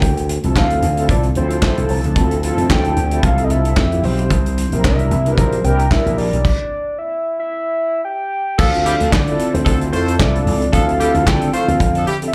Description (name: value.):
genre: early-eighties boogie funk.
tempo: 112 BPM.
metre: 4/4.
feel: swing 56% on 16ths.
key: D minor.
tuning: A4 = 440 Hz.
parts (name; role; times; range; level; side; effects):
soft octave-layered synth lead; melody; 0.0-12.3 s; B4 to A5; -24 LUFS; equal; chorus.
mellow synth brass; accompaniment; 0.0-12.3 s; C4 to Bb4; -24 LUFS; equal; chorus, slapback echo.
phased string machine; sustained chords; 0.0-12.3 s; C3 to E4; -34 LUFS; equal; none.
slap bass with an envelope filter; bass; 0.0-12.0 s; Bb1 to D3; -20 LUFS; equal; none.
modern studio drum kit; drums; 0.0-12.3 s; crash cymbal, handclaps, hi-hat, kick drum, snare drum; -21 LUFS; equal; none.
clear horn section; second line; 8.6-12.2 s; F3 to C5; -25 LUFS; equal; slapback echo.
room: light reverb.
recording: live gig heard through the venue's PA, club reverb.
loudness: -17 LUFS.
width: mono.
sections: 0.0-8.6 A section; 8.6-12.3 B section.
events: stop 6.4-8.6.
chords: 0.0 Dm7; 4.3 C7; 8.6 Dm7.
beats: | 0.02 0.56 1.09 1.63 | 2.16 2.70 3.23 3.77 | 4.30 4.84 5.38 5.91 | 6.45 6.98 7.52 8.05 | 8.59 9.13 9.66 10.20 | 10.73 11.27 11.80 12.34.